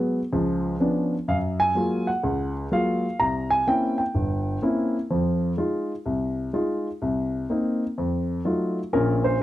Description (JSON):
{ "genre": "solo jazz", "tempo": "126 BPM", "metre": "4/4", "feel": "swing 66% on 8ths", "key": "F minor", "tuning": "A4 = 440 Hz", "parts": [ { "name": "warm baby grand piano", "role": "solo", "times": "0.0-9.4 s", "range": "G1 to Bb5", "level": "-22 LUFS", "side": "equal", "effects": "none" } ], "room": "light reverb", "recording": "close, detailed microphones", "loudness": "-22 LUFS", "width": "side -14 dB against mid", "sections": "0.0-8.9 A section", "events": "none", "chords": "0.3 Db7b9; 1.3 Gbmaj9; 3.2 C7b9; 5.1 Fm7; 7.0 Cm7; 8.0 F7b9; 8.9 Bbmadd9", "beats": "0.33 0.81 | 1.28 1.76 2.24 2.72 | 3.19 3.67 4.15 4.63 | 5.10 5.58 6.06 6.54 | 7.01 7.49 7.97 8.45 | 8.93 9.40" }